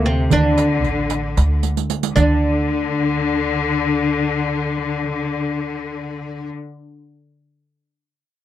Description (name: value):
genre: Turkish makam ensemble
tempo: 226 BPM (eighths)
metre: 7/8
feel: straight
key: unclear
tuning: A4 = 440 Hz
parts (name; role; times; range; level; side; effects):
- oud; melody; 0.0-6.5 s; C4 to D4; -21 LUFS; right 1 dB; none
- rich symphonic cello section; second line; 0.0-6.5 s; C3 to D3; -21 LUFS; left 4 dB; none
- upright bass; bass; 0.0-6.5 s; A1 to D2; -21 LUFS; equal; none
- darbuka; percussion; 0.0-2.4 s; none; -22 LUFS; right 4 dB; none
- riq; percussion; 0.3-2.4 s; none; -25 LUFS; right 14 dB; none
room: moderate booth ambience, RT60 0.2 s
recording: dry, close 1970s-style studio recording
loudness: -17 LUFS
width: side -12 dB against mid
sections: 0.0-2.2 A section; 2.2-5.9 B section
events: drum fill 1.6-2.2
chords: none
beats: 0.05 | 0.31 0.58 0.84 1.11 1.37 1.64 1.90 | 2.17 2.43 2.70 2.96 3.23 3.49 3.76 | 4.02 4.29 4.55 4.82 5.08 5.35 5.62